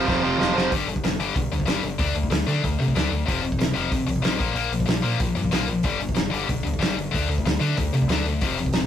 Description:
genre	punk rock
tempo	187 BPM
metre	4/4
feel	straight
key	unclear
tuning	A4 = 440 Hz
part	distorted electric guitar	riff	0.0-0.7 s	F2 to F3	-21 LUFS	right 5 dB	overdrive
part	tight distorted guitar	riff	0.0-8.9 s	F2 to D4	-25 LUFS	left 4 dB	distortion
part	metallic FM bass	bass	0.0-8.9 s	D1 to D3	-27 LUFS	equal	none
part	loose indie drum kit	drums	0.1-8.8 s	hi-hat, kick drum, snare drum	-25 LUFS	equal	none
room	moderate booth ambience, RT60 0.2 s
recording	rough rehearsal-room recording, warm saturation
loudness	-21 LUFS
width	side -10 dB against mid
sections	0.7-8.9 A section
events	drum fill 0.1-0.7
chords	0.0 F5; 0.7 G5; 2.0 D5; 3.3 F; 4.4 Bb5; 5.8 G5; 7.1 D5

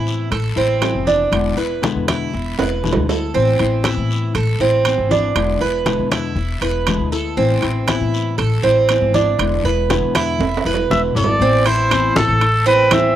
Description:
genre	latin, Cuban son and guajira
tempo	119 BPM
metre	4/4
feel	straight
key	A harmonic minor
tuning	A4 = 442 Hz
part	nylon-string guitar	accompaniment	0.0-13.2 s	B2 to E4	-23 LUFS	left 8 dB	cassette tape
part	Cuban tres	arpeggios	0.0-13.1 s	C4 to B4	-19 LUFS	right 5 dB	cassette tape, plate reverb
part	upright bass	bass	0.0-13.2 s	E1 to A2	-20 LUFS	left 1 dB	none
part	congas	percussion	0.1-13.2 s	none	-24 LUFS	left 1 dB	none
part	guiro	percussion	0.1-13.2 s	none	-32 LUFS	left 8 dB	none
part	timbales	percussion	0.3-13.2 s	none	-22 LUFS	right 7 dB	none
part	mellow trumpet	melody	10.9-13.2 s	A4 to E5	-16 LUFS	equal	cassette tape
room	moderate booth ambience, RT60 0.2 s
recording	home recording on cassette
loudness	-15 LUFS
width	side -11 dB against mid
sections	0.0-11.4 A section; 11.4-13.2 B section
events	drum fill 2.6-3.3, 10.4-11.4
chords	0.0 Amadd9; 1.3 E7; 3.3 Amadd9; 5.4 E7; 7.4 Amadd9; 9.4 E7; 11.4 Amadd9

